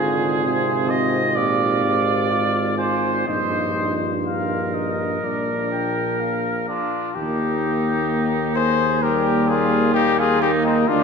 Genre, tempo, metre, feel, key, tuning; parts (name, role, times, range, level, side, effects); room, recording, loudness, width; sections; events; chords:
classical, brass quintet; 61-66 BPM; 4/4; rubato; Eb major; A4 = 440 Hz
warm trumpet; melody; 0.0-11.0 s; Eb4 to Ab5; -24 LUFS; left 6 dB
clear trumpet; second line; 0.0-11.0 s; C4 to Eb5; -23 LUFS; right 4 dB
warm French horn; accompaniment; 0.0-11.0 s; Bb3 to G4; -27 LUFS; left 3 dB
warm trombone; accompaniment; 0.0-11.0 s; G2 to D4; -26 LUFS; right 2 dB
warm tuba; bass; 0.0-11.0 s; Ab1 to Eb2; -25 LUFS; right 1 dB
wet church reverb, RT60 3.1 s; -18 LUFS; side -5 dB against mid
0.0-7.2 A section; 7.2-11.0 B section
0.0 Fm/Ab; 3.3 Eb/Bb; 5.2 Bb; 7.2 Eb